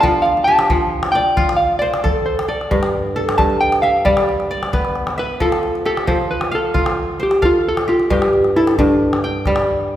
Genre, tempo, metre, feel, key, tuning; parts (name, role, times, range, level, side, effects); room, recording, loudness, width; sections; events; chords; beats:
west african traditional, West African string and xylophone music; 89 BPM (dotted quarters); 12/8; straight; F lydian; A4 = 440 Hz
hollow-body jazz guitar; melody; 0.0-9.6 s; D4 to A5; -17 LUFS; equal
kora; arpeggios; 0.0-10.0 s; G2 to G5; -19 LUFS; equal
calabash; percussion; 0.0-9.7 s; -22 LUFS; left 1 dB
wet recital hall reverb, RT60 1.6 s; recorded in a church or concert hall; -14 LUFS; side -12 dB against mid
0.0-5.4 A section; 5.4-10.0 B section
hollow-body jazz guitar solo 0.0-5.4
0.0 F; 2.7 G; 5.4 F; 8.1 G5
| 0.03 0.70 1.38 2.05 | 2.72 3.39 4.06 4.74 | 5.41 6.08 6.76 7.43 | 8.11 8.78 9.46